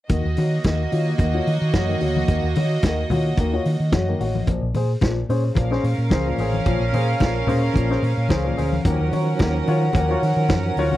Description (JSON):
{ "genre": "disco", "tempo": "110 BPM", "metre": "4/4", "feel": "straight", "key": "Eb dorian", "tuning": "A4 = 440 Hz", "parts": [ { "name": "clear studio string section", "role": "second line", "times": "0.1-11.0 s", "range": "Bb3 to Gb5", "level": "-26 LUFS", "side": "right 3 dB", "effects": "none" }, { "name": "warm grand piano", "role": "accompaniment", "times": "0.1-10.9 s", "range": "Bb2 to Db5", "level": "-25 LUFS", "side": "left 4 dB", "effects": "low-pass filter" }, { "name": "hollow-body short-scale fingered electric bass", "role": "bass", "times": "0.1-11.0 s", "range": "A1 to Eb3", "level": "-22 LUFS", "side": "equal", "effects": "none" }, { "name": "vintage drum kit", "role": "drums", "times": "0.1-10.9 s", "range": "hi-hat, kick drum, snare drum", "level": "-21 LUFS", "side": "right 1 dB", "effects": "none" }, { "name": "congas", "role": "percussion", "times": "0.1-11.0 s", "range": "none", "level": "-28 LUFS", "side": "left 4 dB", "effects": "none" }, { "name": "tonewheel organ", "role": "sustained chords", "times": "8.8-11.0 s", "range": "Eb3 to Db4", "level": "-27 LUFS", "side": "right 4 dB", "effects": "overdrive, chorus vibrato, slow rotary speaker, low-pass filter" } ], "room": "little or no reverb", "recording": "dry, close 1970s-style studio recording", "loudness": "-18 LUFS", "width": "side -14 dB against mid", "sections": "0.1-11.0 A section", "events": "filter sweep 0.1-11.0", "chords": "0.1 Ebm7; 4.5 Bbm7; 8.9 Ebm9", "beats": "| 0.10 0.65 1.20 1.74 | 2.29 2.84 3.38 3.93 | 4.48 5.03 5.57 6.12 | 6.67 7.21 7.76 8.31 | 8.86 9.40 9.95 10.50" }